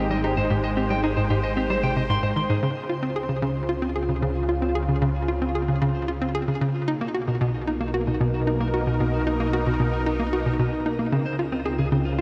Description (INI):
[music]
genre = ambient, sequencer-driven space music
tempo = 113 BPM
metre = 4/4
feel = straight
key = Db lydian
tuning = A4 = 440 Hz
[part]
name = sweeping resonant pad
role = sustained chords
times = 0.0-12.2 s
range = Cb3 to G5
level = -30 LUFS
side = equal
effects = chorus, shimmer reverb
[part]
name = electric guitar at the edge of break-up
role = arpeggios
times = 0.0-12.2 s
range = Bb3 to C6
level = -35 LUFS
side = equal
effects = delay, shimmer reverb
[part]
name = hollow square pluck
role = riff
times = 0.0-12.2 s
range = Ab2 to Ab4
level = -27 LUFS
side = equal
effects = chorus, delay, shimmer reverb
[part]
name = fat analog bass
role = bass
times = 0.0-12.2 s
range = Ab1 to Db2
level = -32 LUFS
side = equal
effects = none
[part]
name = pulsing gated texture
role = texture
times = 0.1-2.6 s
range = none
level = barely audible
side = none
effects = none
[sound]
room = moderate huge ambient reverb, RT60 8.9 s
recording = none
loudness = -24 LUFS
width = mono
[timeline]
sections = 0.0-2.6 A section; 2.6-12.2 B section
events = fade-in on clean electric guitar 2.6-12.2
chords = 0.0 Abmaj7; 2.6 Dbmaj7; 6.9 Cbmaj7; 11.1 Dbmaj7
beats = | 0.51 1.04 1.57 2.10 | 2.63 3.16 3.69 4.22 | 4.75 5.28 5.82 6.35 | 6.88 7.41 7.94 8.47 | 9.00 9.53 10.06 10.59 | 11.12 11.66 12.19